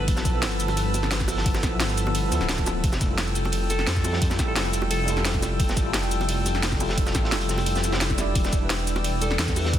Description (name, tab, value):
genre	liquid drum and bass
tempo	174 BPM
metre	4/4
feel	straight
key	unclear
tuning	A4 = 440 Hz
part	growling alto saxophone	melody	0.0, 3.7-5.2, 9.2-9.7 s	A4	-32 LUFS	equal	digital delay
part	tine electric piano	accompaniment	0.0-9.8 s	F3 to D5	-30 LUFS	equal	medium stereo tremolo, dub echo
part	airy breathy pad	sustained chords	0.0-9.8 s	A4 to E6	-32 LUFS	left 1 dB	chorus
part	dark detuned saw bass	bass	0.0-9.8 s	D1 to F2	-26 LUFS	equal	none
part	crunchy breakbeat drum kit	drums	0.1-9.8 s	hi-hat, snare drum	-33 LUFS	equal	high-pass filter on hats, high-pass filter on snare, high-pass filter on room
part	drum and bass drum kit	drums	0.1-9.8 s	hi-hat, ride cymbal, shaker, snare drum	-29 LUFS	equal	overdrive
part	electronic kick drum	drums	0.1-9.8 s	none	-25 LUFS	equal	overdrive
part	bongos	percussion	0.2-9.6 s	none	-36 LUFS	right 2 dB	none
part	swell	sound effects	7.8-8.4 s	none	-35 LUFS	left 6 dB	none
room	studio reverb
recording	dense, heavily limited modern master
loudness	-21 LUFS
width	side -11 dB against mid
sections	0.0-9.8 A section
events	swell 7.8-8.4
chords	0.0 G13; 2.8 Fmaj9; 8.4 Em7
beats	| 0.08 0.42 0.77 1.11 | 1.46 1.80 2.15 2.49 | 2.84 3.18 3.53 3.87 | 4.22 4.56 4.91 5.25 | 5.60 5.94 6.29 6.63 | 6.98 7.32 7.67 8.01 | 8.36 8.70 9.04 9.39 | 9.73